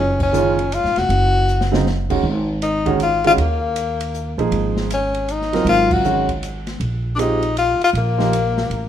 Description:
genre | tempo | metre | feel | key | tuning
modal jazz | 158 BPM | 3/4 | swing 64% on 8ths | Ab mixolydian | A4 = 439 Hz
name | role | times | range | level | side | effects
breathy tenor saxophone | melody | 0.0-8.9 s | Bb3 to Gb4 | -18 LUFS | left 4 dB | none
upright bass | bass | 0.0-8.9 s | F1 to Eb2 | -22 LUFS | right 1 dB | none
open jazz drum kit | drums | 0.2-8.8 s | crash cymbal, hi-hat, kick drum, ride cymbal, snare drum | -28 LUFS | left 2 dB | none
warm concert grand piano | accompaniment | 0.3-8.3 s | Db3 to Bb4 | -22 LUFS | right 5 dB | none
room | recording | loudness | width
moderate large studio reverb, RT60 1.4 s | minimal, uncompressed stereo recording | -16 LUFS | side -10 dB against mid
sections
0.0-2.2 A section; 2.2-8.9 B section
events
band accent 0.1, 5.9; drum fill 1.5-1.9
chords
0.0 Gbmaj7sus2; 2.2 Ab7sus2; 6.8 Bb5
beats
0.33 0.71 | 1.09 1.47 1.85 | 2.23 2.61 3.00 | 3.38 3.76 4.14 | 4.52 4.90 5.28 | 5.66 6.04 6.42 | 6.80 7.19 7.57 | 7.95 8.33 8.71

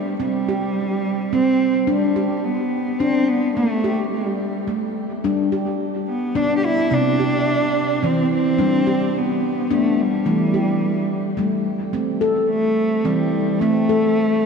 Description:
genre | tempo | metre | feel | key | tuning
world meditative, meditative tuned percussion | 108 BPM | 3/4 | straight | A minor | A4 = 440 Hz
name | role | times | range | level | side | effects
warm cello | melody | 0.0-14.5 s | G3 to G4 | -21 LUFS | right 1 dB | shimmer reverb
handpan | arpeggios | 0.0-14.5 s | C3 to A4 | -20 LUFS | equal | shimmer reverb, diffuse ambient delay
room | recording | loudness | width
wet cathedral reverb, RT60 4.9 s | in a vast, echoing space | -17 LUFS | side -5 dB against mid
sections
0.0-11.9 A section; 11.9-14.5 B section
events
none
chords
0.2 C5; 1.9 G; 3.6 Gsus2; 5.2 G; 6.9 C; 8.6 G; 10.3 Em; 11.9 Am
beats
| 0.20 0.77 1.32 | 1.88 2.44 3.00 | 3.56 4.12 4.68 | 5.24 5.80 6.36 | 6.91 7.47 8.03 | 8.59 9.15 9.70 | 10.26 10.82 11.38 | 11.94 12.49 13.05 | 13.61 14.17

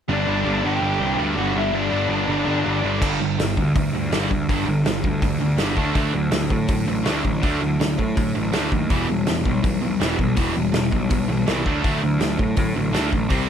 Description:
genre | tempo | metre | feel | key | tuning
punk rock | 163 BPM | 4/4 | straight | G major | A4 = 440 Hz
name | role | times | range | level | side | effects
dark smooth lead guitar | melody | 0.1-2.8 s | D4 to G5 | -24 LUFS | left 2 dB | overdrive, slapback echo
cranked stack guitar | riff | 0.1-13.5 s | E2 to D4 | -24 LUFS | right 9 dB | overdrive
distorted electric guitar | riff | 0.1-13.5 s | G2 to D4 | -26 LUFS | left 12 dB | distortion
fuzz picked electric bass | bass | 0.1-13.5 s | E1 to A2 | -25 LUFS | equal | overdrive
loose indie drum kit | drums | 3.0-13.4 s | crash cymbal, hi-hat, kick drum, snare drum | -24 LUFS | equal | none
room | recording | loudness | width
light reverb | none | -19 LUFS | side -8 dB against mid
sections
0.1-3.0 A section; 3.0-13.5 B section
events
none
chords
0.1 G; 3.0 G5; 5.8 D; 8.9 Em; 11.7 D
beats
| 0.09 0.46 0.82 1.19 | 1.55 1.92 2.29 2.65 | 3.02 3.39 3.75 4.12 | 4.49 4.86 5.22 5.59 | 5.96 6.32 6.69 7.06 | 7.43 7.79 8.16 8.53 | 8.90 9.26 9.63 10.00 | 10.37 10.73 11.10 11.47 | 11.84 12.21 12.57 12.94 | 13.31

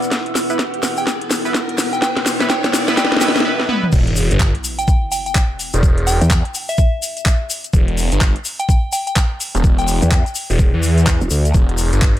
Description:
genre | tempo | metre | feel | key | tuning
bass house | 126 BPM | 4/4 | swing 61% on 16ths | E minor | A4 = 440 Hz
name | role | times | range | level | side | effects
deep dark ambient pad | sustained chords | 0.0-3.4 s | B3 to F#5 | -28 LUFS | left 3 dB | chorus, built-in reverb, sidechain pumping
garage drum kit | drums | 0.0-12.2 s | crash cymbal, handclaps, hi-hat, snare drum, toms | -20 LUFS | equal | small room ambience
tube shaker | percussion | 0.0-12.1 s | none | -26 LUFS | left 6 dB | none
riser, noise sweep and sub drop | sound effects | 0.1-5.8 s | none | -26 LUFS | equal | none
warbly tape-like pad | texture | 0.0-3.4 s | E4 to E6 | -28 LUFS | right 2 dB | chorus, built-in reverb, sidechain pumping
electronic kick drum | drums | 0.1-12.1 s | none | -15 LUFS | equal | high-pass filter on kick, small room ambience
band-passed chord stab | stabs | 0.5-3.8 s | B3 to B4 | -25 LUFS | right 3 dB | chorus, sidechain pumping, digital delay
soft synth bell | melody | 1.0-10.3 s | E5 to G5 | -24 LUFS | equal | chorus, digital delay
phased detuned saw bass | bass | 3.9-12.1 s | E1 to E2 | -16 LUFS | equal | phaser, overdrive, sidechain pumping
growl bass | bass | 6.2-6.4, 10.0-11.5 s | E1 to E2 | -14 LUFS | equal | chorus, overdrive, sidechain pumping
room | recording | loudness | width
light reverb, digital ambience | none | -14 LUFS | side -13 dB against mid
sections
0.0-3.9 A section; 3.9-12.2 B section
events
build-up 0.0-3.9; drum fill 0.0-3.4, 3.6-3.9; filter sweep on synth stab 0.0-3.9; filter sweep on ambient pad 0.0-3.9; riser 0.1-3.4; noise sweep 2.0-3.9; break 3.4-3.9; drop 3.9-12.2; impact 3.9-5.8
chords
0.0 E5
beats
| 0.12 0.59 1.07 1.54 | 2.02 2.50 2.97 3.45 | 3.93 4.40 4.88 5.35 | 5.83 6.31 6.78 7.26 | 7.74 8.21 8.69 9.16 | 9.64 10.12 10.59 11.07 | 11.54 12.02

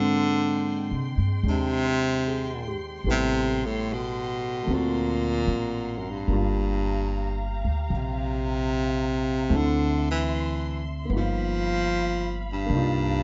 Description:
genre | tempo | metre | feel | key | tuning
jazz ballad | 75 BPM | 4/4 | swing 68% on 8ths | unclear | A4 = 440 Hz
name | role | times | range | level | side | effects
bright baritone saxophone | melody | 0.0-13.2 s | F#2 to F3 | -29 LUFS | equal | plate reverb
warm grand piano | accompaniment | 0.0-13.2 s | G3 to C5 | -34 LUFS | equal | none
dark studio string section | sustained chords | 0.0-13.2 s | G#3 to C6 | -41 LUFS | equal | none
upright bass | bass | 0.0-13.2 s | G1 to C3 | -31 LUFS | equal | none
room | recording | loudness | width
moderate club reverb, RT60 0.7 s | nothing above 7.6 kHz | -26 LUFS | mono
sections
0.0-13.2 A section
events
none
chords
0.0 Abmaj7; 3.1 Am7; 4.7 D7b13; 6.3 Gm7; 9.5 Dsus2; 11.1 G7alt; 12.7 Cm11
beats
0.64 1.45 2.25 | 3.06 3.87 4.67 5.48 | 6.29 7.10 7.91 8.71 | 9.51 10.31 11.11 11.91 | 12.71

